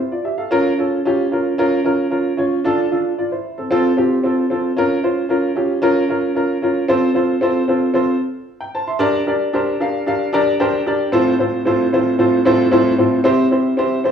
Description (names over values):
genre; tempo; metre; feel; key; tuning
soul; 113 BPM; 4/4; straight; F major; A4 = 440 Hz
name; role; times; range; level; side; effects
warm upright piano; solo; 0.0-14.1 s; A2 to C6; -15 LUFS; equal; none
room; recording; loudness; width
wet large studio reverb, RT60 1.1 s; band playing live in one room, small room reverb; -15 LUFS; side -7 dB against mid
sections
0.0-6.9 A section; 6.9-14.1 B section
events
upright piano fill 10.1-11.1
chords
0.0 F; 0.5 Bbm; 2.6 Dm; 3.7 F; 4.8 Bbm; 6.9 F; 9.0 Gm; 11.1 F/A; 13.3 C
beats
| 0.51 1.04 1.58 2.11 | 2.64 3.18 3.71 4.24 | 4.77 5.30 5.83 6.36 | 6.89 7.42 7.95 8.48 | 9.01 9.54 10.07 10.60 | 11.13 11.66 12.19 12.72 | 13.26 13.79